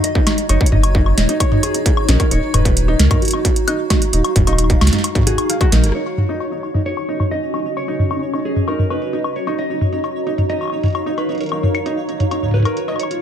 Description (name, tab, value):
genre	IDM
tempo	132 BPM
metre	4/4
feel	straight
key	F# major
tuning	A4 = 440 Hz
part	mellow electric guitar	melody	0.0-13.2 s	F#4 to D#5	-25 LUFS	right 2 dB	tape echo
part	granular cloud pad	sustained chords	0.0-13.2 s	C#4 to A#5	-23 LUFS	left 1 dB	built-in reverb
part	booming analog drum machine	drums	0.0-13.2 s	hi-hat, rim click, snare drum, toms, woodblock	-19 LUFS	equal	overdrive, low-pass filter on hats, low-pass filter on perc, low-pass filter on snare, low-pass filter on toms, low-pass filter on room
part	felt-muted upright piano	arpeggios	0.2-13.2 s	D#4 to E#5	-25 LUFS	right 2 dB	low-pass filter, ping-pong delay
part	electronic kick drum	drums	0.2-5.7 s	none	-17 LUFS	equal	distortion
part	warm sub bass	bass	0.5-5.9 s	D#1 to C#2	-15 LUFS	equal	none
part	pulsing gated texture	texture	5.9-13.2 s	C#5	-33 LUFS	right 4 dB	chorus, built-in reverb
room	little or no reverb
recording	none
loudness	-15 LUFS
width	side -9 dB against mid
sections	0.0-5.9 A section; 5.9-13.2 B section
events	drum fill 5.5-5.9; band accent 5.7; filter sweep on drum 5.9-13.2; filter sweep on ambient pad 5.9-13.2; filter sweep on felt piano 5.9-13.2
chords	0.0 F#5; 2.3 D#madd9; 5.9 F#6; 9.6 D#madd9